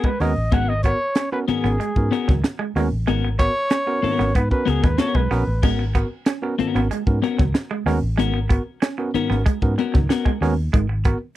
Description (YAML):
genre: funk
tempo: 94 BPM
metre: 4/4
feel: straight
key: G# minor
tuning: A4 = 440 Hz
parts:
  - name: breathy trumpet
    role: melody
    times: 0.0-5.6 s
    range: G#4 to F#5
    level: -24 LUFS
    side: equal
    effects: none
  - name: clean electric guitar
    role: accompaniment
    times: 0.0-10.3 s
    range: B3 to A#4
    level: -23 LUFS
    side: left 7 dB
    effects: spring reverb
  - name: semi-hollow electric guitar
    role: riff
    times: 0.0-11.2 s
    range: F#3 to C#4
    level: -28 LUFS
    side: right 5 dB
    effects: tremolo
  - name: crisp fusion drum kit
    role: drums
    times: 0.0-11.2 s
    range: crash cymbal, hi-hat, kick drum, snare drum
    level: -20 LUFS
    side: equal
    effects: none
  - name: barky tine electric piano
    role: stabs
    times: 0.2-11.2 s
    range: G#2 to A#4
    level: -26 LUFS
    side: right 3 dB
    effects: none
  - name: vintage muted fingered electric bass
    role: bass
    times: 0.2-11.1 s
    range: G#1 to G#2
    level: -22 LUFS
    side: equal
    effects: none
room: little or no reverb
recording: dry, close 1970s-style studio recording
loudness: -18 LUFS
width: side -14 dB against mid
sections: 0.0-5.6 A section; 5.6-11.4 B section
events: trumpet solo 0.0-5.6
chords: 0.0 G#m11